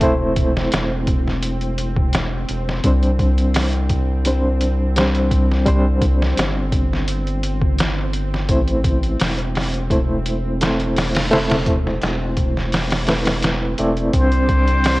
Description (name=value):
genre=trip hop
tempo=85 BPM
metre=4/4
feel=straight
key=unclear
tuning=A4 = 440 Hz
part: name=bright reed electric piano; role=accompaniment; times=0.0-15.0 s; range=G3 to D5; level=-22 LUFS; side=equal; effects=fast tremolo, tape echo
part: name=round analog bass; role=bass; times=0.0-15.0 s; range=E1 to C2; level=-21 LUFS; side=equal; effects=none
part: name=trip hop sampler-style drum kit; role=drums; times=0.0-15.0 s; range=hi-hat, kick drum, snare drum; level=-20 LUFS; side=equal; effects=none
part: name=bowed-like drone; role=texture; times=0.0-15.0 s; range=C4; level=-31 LUFS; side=right 1 dB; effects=built-in reverb
part: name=string machine, cellos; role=sustained chords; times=14.1-15.0 s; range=C4 to D6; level=-26 LUFS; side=right 2 dB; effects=ensemble chorus
part: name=trumpet with plunger mute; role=melody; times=14.2-15.0 s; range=C5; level=-20 LUFS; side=left 2 dB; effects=none
room=digital ambience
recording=worn, warbling old tape, cassette tape, warbly pitch drift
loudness=-16 LUFS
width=side -20 dB against mid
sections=0.0-15.0 A section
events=kick drops out 12.7-14.1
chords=0.0 Am; 2.8 Csus2; 8.5 Am; 14.1 Csus2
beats=| 0.02 0.72 1.43 2.13 | 2.84 3.55 4.25 4.96 | 5.66 6.37 7.08 7.78 | 8.49 9.19 9.90 10.61 | 11.31 12.02 12.72 13.43 | 14.13 14.84